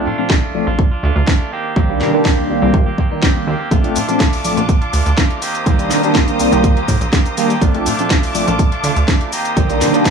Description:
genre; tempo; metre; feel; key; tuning
filtered disco house; 123 BPM; 4/4; straight; Bb major; A4 = 439 Hz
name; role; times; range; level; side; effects
tine electric piano; accompaniment; 0.0-10.1 s; Eb3 to F4; -17 LUFS; equal; medium stereo tremolo, phaser, sidechain pumping, low-pass filter
direct-recorded clean electric guitar; riff; 0.0-10.1 s; Eb3 to G4; -23 LUFS; right 4 dB; sidechain pumping, low-pass filter
plucky analog bass; bass; 0.0-10.1 s; Bb1 to C3; -20 LUFS; right 1 dB; sidechain pumping, low-pass filter
electronic kick drum; drums; 0.3-10.1 s; none; -15 LUFS; right 1 dB; overdrive
house drum kit; drums; 0.3-10.1 s; cabasa, hi-hat, snare drum; -21 LUFS; left 1 dB; overdrive, sidechain pumping on hats, sidechain pumping on perc
warm studio string section; sustained chords; 3.7-10.1 s; C5 to Eb6; -23 LUFS; left 3 dB; vintage 12-bit sampler grit, sidechain pumping, low-pass filter
room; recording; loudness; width
light reverb; none; -13 LUFS; side -6 dB against mid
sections
0.0-10.1 A section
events
none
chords
0.0 Bbmaj7; 1.5 Cm7; 3.7 Bbmaj7; 5.4 Cm7; 7.6 Bbmaj7; 9.3 Cm7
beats
0.30 0.79 1.28 | 1.76 2.25 2.74 3.23 | 3.71 4.20 4.69 5.18 | 5.67 6.15 6.64 7.13 | 7.62 8.11 8.59 9.08 | 9.57 10.06

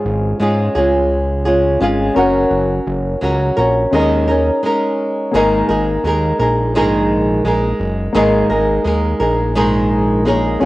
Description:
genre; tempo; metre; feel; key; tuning
acoustic pop; 85 BPM; 4/4; straight; unclear; A4 = 440 Hz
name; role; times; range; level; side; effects
flamenco guitar; accompaniment; 0.0-10.7 s; Ab2 to Bb4; -15 LUFS; right 1 dB; cassette tape, plate reverb
warm concert grand piano; accompaniment; 0.0-10.7 s; Bb3 to Gb5; -21 LUFS; left 3 dB; cassette tape, plate reverb
fat analog bass; bass; 0.1-10.7 s; Gb1 to Ab2; -19 LUFS; equal; none
room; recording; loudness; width
moderate booth ambience, RT60 0.2 s; home recording on cassette; -13 LUFS; side -18 dB against mid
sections
0.0-5.3 A section; 5.3-10.7 B section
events
none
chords
0.0 Db/Ab; 2.2 Gb; 3.9 Eb7sus4; 5.3 Absus2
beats
0.41 1.11 1.82 | 2.52 3.23 3.93 4.63 | 5.34 6.04 6.75 7.45 | 8.16 8.86 9.56 10.27

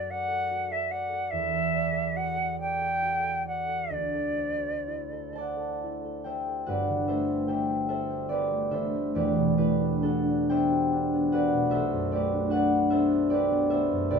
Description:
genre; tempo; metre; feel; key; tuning
classical, impressionist duo for flute and harp; 40-51 BPM (dotted quarters); 6/8; rubato; G major; A4 = 440 Hz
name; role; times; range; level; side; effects
concert flute; melody; 0.0-5.4 s; D5 to G5; -28 LUFS; right 1 dB; none
concert harp; accompaniment; 0.0-14.2 s; E1 to A5; -26 LUFS; equal; none
room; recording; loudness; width
light reverb; close, detailed microphones; -25 LUFS; side -6 dB against mid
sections
0.0-6.7 A section; 6.7-14.2 B section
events
none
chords
0.0 D/F#; 1.3 Em11; 3.9 D9sus4; 6.7 G69; 9.1 Em11; 11.7 Bm7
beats
0.11 | 1.32 2.60 | 3.92 5.36 | 6.68 7.90 | 9.14 10.50 | 11.72 12.92 | 14.12

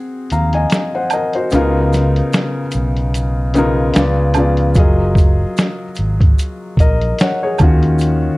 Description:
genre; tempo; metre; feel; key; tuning
lo-fi hip hop; 74 BPM; 4/4; swing 55% on 16ths; F# major; A4 = 440 Hz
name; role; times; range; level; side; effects
felt-muted upright piano; accompaniment; 0.0-8.4 s; C#3 to A#5; -17 LUFS; left 1 dB; cassette tape, low-pass filter
fingered electric bass; bass; 0.3-8.3 s; F#1 to D#2; -16 LUFS; equal; none
lo-fi sampler-style drum kit; drums; 0.3-8.2 s; hi-hat, kick drum, snare drum; -14 LUFS; equal; none
maracas and woodblock; percussion; 0.3-8.2 s; none; -26 LUFS; right 8 dB; none
room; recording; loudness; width
moderate studio reverb, RT60 0.6 s; dark, warm production; -13 LUFS; side -21 dB against mid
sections
0.0-8.4 A section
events
break 0.0-4.8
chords
0.0 G#7; 1.5 C#13; 4.0 C#7b9; 4.8 F#maj13; 7.6 D#m9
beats
0.71 | 1.52 2.33 3.14 3.95 | 4.76 5.57 6.38 7.19 | 8.00

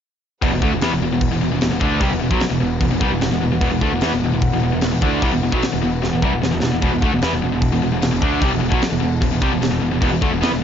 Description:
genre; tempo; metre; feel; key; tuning
heavy metal; 150 BPM; 4/4; straight; unclear; A4 = 437 Hz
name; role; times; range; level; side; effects
dark studio string section; sustained chords; 0.4-10.6 s; E4 to F#5; -31 LUFS; left 2 dB; none
distorted electric guitar; riff; 0.4-10.6 s; E2 to D4; -23 LUFS; right 8 dB; distortion
distorted electric guitar; riff; 0.4-10.6 s; E2 to D4; -25 LUFS; equal; distortion
high-gain distorted guitar; riff; 0.4-10.6 s; E2 to D4; -22 LUFS; left 9 dB; distortion
fuzz picked electric bass; bass; 0.4-10.6 s; E1 to E2; -24 LUFS; equal; overdrive
tight metal drum kit; drums; 0.4-10.5 s; crash cymbal, kick drum, snare drum; -22 LUFS; equal; none
room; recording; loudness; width
light reverb; dark, warm production, nothing above 7.5 kHz; -16 LUFS; side -8 dB against mid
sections
0.4-10.6 A section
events
drum fill 6.0-6.8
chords
0.4 Em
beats
| 0.42 0.82 1.22 1.62 | 2.02 2.42 2.82 3.22 | 3.62 4.02 4.42 4.82 | 5.22 5.62 6.02 6.42 | 6.83 7.22 7.62 8.03 | 8.43 8.82 9.22 9.62 | 10.03 10.43

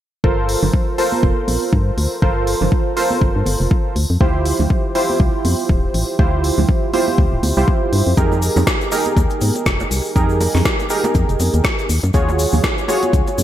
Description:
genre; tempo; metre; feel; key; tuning
deep house; 121 BPM; 4/4; swing 57% on 16ths; unclear; A4 = 441 Hz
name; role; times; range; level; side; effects
warm analog keys; stabs; 0.2-13.4 s; Eb4 to Db5; -19 LUFS; right 2 dB; chorus, vintage 12-bit sampler grit, sidechain pumping, ping-pong delay
organ-like FM bass; bass; 0.2-13.4 s; D1 to Ab2; -18 LUFS; left 1 dB; sidechain pumping
electronic kick drum; drums; 0.2-13.2 s; none; -17 LUFS; left 1 dB; none
deep house drum kit; drums; 0.5-13.4 s; hi-hat, snare drum; -24 LUFS; left 1 dB; gated reverb
congas and bongos; percussion; 0.6-13.4 s; none; -26 LUFS; right 4 dB; sidechain pumping on perc
egg shaker; percussion; 8.2-13.4 s; none; -31 LUFS; left 6 dB; none
room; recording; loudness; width
light reverb; bright 1980s-style digital production; -14 LUFS; side -12 dB against mid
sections
0.2-13.4 A section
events
none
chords
0.2 Gm11; 4.0 Dm11; 8.2 Fm11; 11.9 Ebm11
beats
| 0.24 0.74 1.23 1.73 | 2.22 2.72 3.22 3.71 | 4.21 4.70 5.20 5.70 | 6.19 6.69 7.18 7.68 | 8.17 8.67 9.17 9.66 | 10.16 10.65 11.15 11.64 | 12.14 12.64 13.13

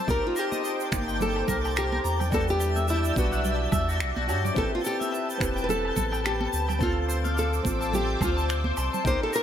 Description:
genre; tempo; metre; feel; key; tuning
sunset chillout; 107 BPM; 4/4; swing 57% on 16ths; unclear; A4 = 440 Hz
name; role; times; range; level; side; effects
warm concert grand piano; accompaniment; 0.0-9.4 s; G3 to G5; -34 LUFS; left 1 dB; auto-pan, tape echo
lush unison pad; sustained chords; 0.0-9.4 s; Bb4 to E6; -34 LUFS; equal; chorus, phaser
electric guitar at the edge of break-up; arpeggios; 0.0-9.4 s; F#4 to C6; -33 LUFS; left 3 dB; tape echo
twinkling granular texture; texture; 0.0-9.4 s; A5 to G6; -38 LUFS; right 1 dB; built-in reverb
nylon-string guitar; melody; 0.1-9.4 s; E4 to C5; -30 LUFS; equal; tape echo
warm sub bass; bass; 0.1-9.2 s; E1 to G2; -29 LUFS; equal; none
electronic kick drum; drums; 0.1-9.2 s; none; -30 LUFS; equal; none
shaker, finger snaps and woodblock; drums; 0.1-9.4 s; none; -35 LUFS; right 3 dB; none
congas; percussion; 0.1-9.2 s; none; -35 LUFS; right 4 dB; none
room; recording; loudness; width
light reverb, small room reverb; none; -24 LUFS; side -9 dB against mid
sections
0.0-9.4 A section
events
none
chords
0.1 Cm9; 2.3 Em9; 4.6 Am9; 6.8 Dm9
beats
| 0.08 0.64 1.20 1.76 | 2.32 2.88 3.44 4.01 | 4.57 5.13 5.69 6.25 | 6.81 7.37 7.93 8.49 | 9.05

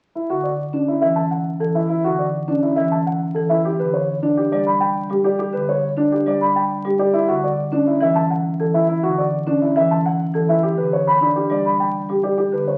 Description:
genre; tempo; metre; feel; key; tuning
classical, minimalist pattern music; 103 BPM; 3/4; straight; D major; A4 = 441 Hz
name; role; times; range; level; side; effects
warm concert grand piano; arpeggios; 0.2-12.7 s; D4 to B4; -24 LUFS; equal; none
marimba with soft mallets; accompaniment; 0.3-12.7 s; D3 to D4; -24 LUFS; equal; none
dark grand piano; melody; 0.4-12.8 s; G4 to B5; -22 LUFS; equal; none
room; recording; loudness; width
wet large studio reverb, RT60 1.1 s; very old 78 rpm record, vinyl crackle; -19 LUFS; mono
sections
0.1-12.8 A section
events
none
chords
0.1 D5; 3.6 G5; 7.1 D5; 10.6 G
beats
| 0.15 0.73 1.31 | 1.90 2.48 3.06 | 3.65 4.23 4.81 | 5.39 5.98 6.56 | 7.14 7.72 8.31 | 8.89 9.47 10.05 | 10.64 11.22 11.80 | 12.38

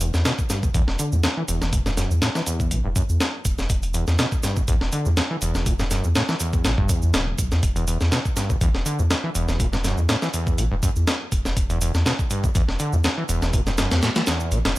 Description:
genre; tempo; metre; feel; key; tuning
breakbeat, breaks; 122 BPM; 4/4; swing 54% on 16ths; E minor; A4 = 443 Hz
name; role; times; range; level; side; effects
overdriven acid bass; riff; 0.0-14.8 s; E1 to E3; -26 LUFS; equal; distortion, lush chorus, digital delay
saturated sub bass; bass; 0.0-14.7 s; D1 to E2; -23 LUFS; equal; none
breakbeat sampler-style drum kit; drums; 0.0-14.8 s; hi-hat, kick drum, snare drum; -23 LUFS; equal; studio reverb
shaker; drums; 0.0-14.8 s; none; -34 LUFS; right 4 dB; studio reverb
room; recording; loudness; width
little or no reverb; none; -20 LUFS; side -18 dB against mid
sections
0.0-14.8 A section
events
filter sweep on acid bass 0.0-14.8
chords
none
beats
0.25 0.75 1.24 | 1.73 2.22 2.71 3.21 | 3.70 4.19 4.68 5.17 | 5.66 6.16 6.65 7.14 | 7.63 8.12 8.62 9.11 | 9.60 10.09 10.58 11.07 | 11.57 12.06 12.55 13.04 | 13.53 14.03 14.52

